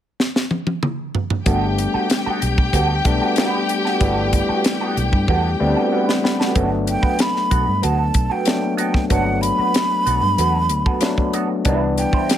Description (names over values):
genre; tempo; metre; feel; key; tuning
lush 1970s-style soul; 94 BPM; 4/4; straight; G major; A4 = 442 Hz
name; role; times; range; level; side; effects
tight funk drum kit; drums; 0.2-12.4 s; hi-hat, kick drum, snare drum, toms; -20 LUFS; equal; none
warm studio string section; second line; 1.5-6.5 s; G4 to G5; -24 LUFS; left 3 dB; none
overdriven tine electric piano; accompaniment; 1.5-12.4 s; D3 to B5; -22 LUFS; left 3 dB; none
electric guitar through a small old amp; riff; 1.5-12.3 s; B3 to C5; -26 LUFS; right 6 dB; wah
vintage muted fingered electric bass; bass; 1.5-12.2 s; G1 to G2; -22 LUFS; equal; none
breathy hollow jazz flute; melody; 6.9-12.4 s; F#5 to B5; -21 LUFS; right 1 dB; none
room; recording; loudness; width
light reverb, studio ambience; none; -16 LUFS; side -10 dB against mid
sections
0.0-1.5 A section; 1.5-6.6 B section; 6.6-12.4 C section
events
drum fill 0.2-1.5, 5.3-6.6; tine electric piano fill 5.3-6.6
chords
0.0 N.C.; 1.5 Gmaj9; 11.7 Cmaj9